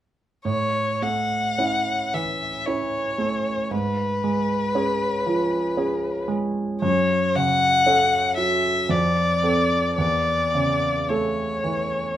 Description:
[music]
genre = classical, romantic duo for violin and grand piano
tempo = 57 BPM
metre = 3/4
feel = uneven beats, rubato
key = A major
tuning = A4 = 435 Hz
[part]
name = rich violin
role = melody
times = 0.5-12.2 s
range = B4 to F#5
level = -22 LUFS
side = left 2 dB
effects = none
[part]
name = clear concert grand piano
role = accompaniment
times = 0.5-12.2 s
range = E2 to A4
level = -24 LUFS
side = right 2 dB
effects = none
[sound]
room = light reverb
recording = none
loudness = -20 LUFS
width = side -12 dB against mid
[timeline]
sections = 0.5-12.2 A section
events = none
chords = 0.5 A; 3.7 C#7/G#; 6.8 F#m; 8.9 F; 10.0 A/E

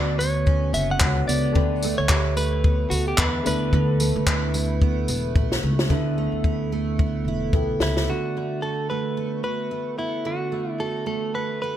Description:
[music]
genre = acoustic pop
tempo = 110 BPM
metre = 4/4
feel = swing 60% on 16ths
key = D major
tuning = A4 = 438 Hz
[part]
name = direct-recorded clean electric guitar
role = melody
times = 0.0-11.8 s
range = E4 to F#5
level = -27 LUFS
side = left 1 dB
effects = ping-pong delay
[part]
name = clear upright piano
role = accompaniment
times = 0.0-8.1 s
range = A3 to C#6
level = -32 LUFS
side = left 8 dB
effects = wide subtle chorus
[part]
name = picked steel-string acoustic guitar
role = accompaniment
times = 0.0-11.8 s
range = D3 to G4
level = -27 LUFS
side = right 5 dB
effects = analog chorus
[part]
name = upright bass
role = bass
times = 0.0-8.1 s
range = E1 to E2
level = -25 LUFS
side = equal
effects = none
[part]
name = compact cocktail drum kit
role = drums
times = 0.2-8.1 s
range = handclaps, kick drum, snare drum, tambourine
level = -23 LUFS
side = left 1 dB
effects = gated reverb
[sound]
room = light reverb, small room ambience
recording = bright 1980s-style digital production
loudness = -20 LUFS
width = side -11 dB against mid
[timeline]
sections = 0.0-5.9 A section; 5.9-8.1 B section; 8.1-11.8 C section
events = drum fill 5.4-5.9, 7.0-8.1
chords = 0.0 Bmadd9/D; 1.6 Gadd9/D; 3.5 Asus2/D; 8.1 D6

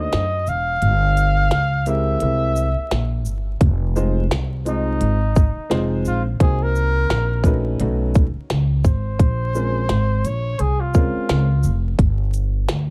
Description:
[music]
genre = hip hop, jazz-hop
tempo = 86 BPM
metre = 4/4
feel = swing 58% on 16ths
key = F minor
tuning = A4 = 440 Hz
[part]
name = trumpet with bucket mute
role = melody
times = 0.0-11.8 s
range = Eb4 to F5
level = -26 LUFS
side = equal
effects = none
[part]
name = warm upright piano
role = accompaniment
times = 0.0-11.5 s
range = Ab3 to Eb5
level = -27 LUFS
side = equal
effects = none
[part]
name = upright bass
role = bass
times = 0.0-12.9 s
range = E1 to F#2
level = -22 LUFS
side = equal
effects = none
[part]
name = minimal click drum kit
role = drums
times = 0.1-12.9 s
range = hi-hat, kick drum, shaker, snare drum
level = -20 LUFS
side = equal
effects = none
[sound]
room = studio ambience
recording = dark, warm production, vinyl crackle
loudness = -19 LUFS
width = mono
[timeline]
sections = 0.0-3.6 A section; 3.6-12.9 B section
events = kick muted 0.8-3.6; muted trumpet solo 3.6-12.9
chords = 0.0 D7b9; 0.8 Gm7b5; 2.2 C7b13; 3.6 Fm7; 6.4 Cm7b5; 7.8 B9; 9.2 Bbm9; 12.0 G5

